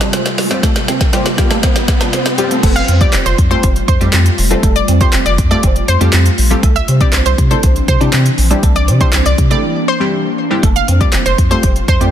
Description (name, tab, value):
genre	dance-pop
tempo	120 BPM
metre	4/4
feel	straight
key	F major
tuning	A4 = 440 Hz
part	punchy chord stab	accompaniment	0.0-12.1 s	G3 to A4	-20 LUFS	left 2 dB	chorus, sidechain pumping, low-pass filter
part	ethereal airy pad	sustained chords	0.0-12.1 s	C3 to F4	-22 LUFS	equal	ensemble chorus, built-in reverb, sidechain pumping, low-pass filter
part	twelve-string electric guitar	riff	0.0-12.1 s	A3 to D4	-22 LUFS	right 4 dB	analog chorus, low-pass filter
part	deep house drum kit	drums	0.0-12.1 s	crash cymbal, handclaps, hi-hat, kick drum, snare drum	-14 LUFS	equal	none
part	riser	sound effects	0.0-2.6 s	none	-21 LUFS	equal	none
part	warm sub bass	bass	2.6-12.1 s	E1 to C3	-14 LUFS	equal	sidechain pumping
part	analog pluck	melody	2.8-12.0 s	C5 to F5	-18 LUFS	equal	chorus, sidechain pumping, digital delay
room	digital ambience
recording	dense, heavily limited modern master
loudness	-10 LUFS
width	side -10 dB against mid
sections	0.0-2.6 A section; 2.6-12.1 B section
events	build-up 0.0-2.6; drum fill 0.0-2.6; riser 0.0-2.6; drop 2.6-12.1; break 9.6-10.6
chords	0.0 Csus4; 2.6 Fadd9; 6.6 Cadd9; 10.6 Fadd9